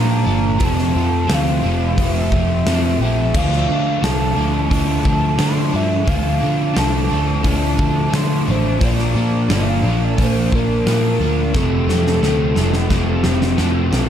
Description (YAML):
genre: rock, shoegaze and dream pop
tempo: 88 BPM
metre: 4/4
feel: straight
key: D minor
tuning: A4 = 437 Hz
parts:
  - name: hollow clarinet-like synth lead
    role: melody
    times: 0.0-13.6 s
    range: A4 to C6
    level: -24 LUFS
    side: equal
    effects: chorus, analog delay
  - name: crunchy overdriven guitar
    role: riff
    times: 0.0-14.1 s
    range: F2 to D4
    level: -19 LUFS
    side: equal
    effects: analog chorus
  - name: vintage muted picked electric bass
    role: bass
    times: 0.0-14.1 s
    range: F1 to D3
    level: -19 LUFS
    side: equal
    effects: none
  - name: huge arena drum kit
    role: drums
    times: 0.6-14.1 s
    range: crash cymbal, hi-hat, kick drum, snare drum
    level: -22 LUFS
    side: equal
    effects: none
room: small room ambience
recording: dark, warm production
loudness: -15 LUFS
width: side -9 dB against mid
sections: 0.0-14.1 A section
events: drum fill 11.5-14.1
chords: 0.0 Bb; 0.6 Fmaj7; 3.3 Dm7; 8.8 Bb; 11.5 F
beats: | 0.60 1.29 1.97 2.66 | 3.34 4.03 4.71 5.39 | 6.08 6.76 7.44 8.13 | 8.81 9.49 10.17 10.86 | 11.54 12.22 12.90 13.58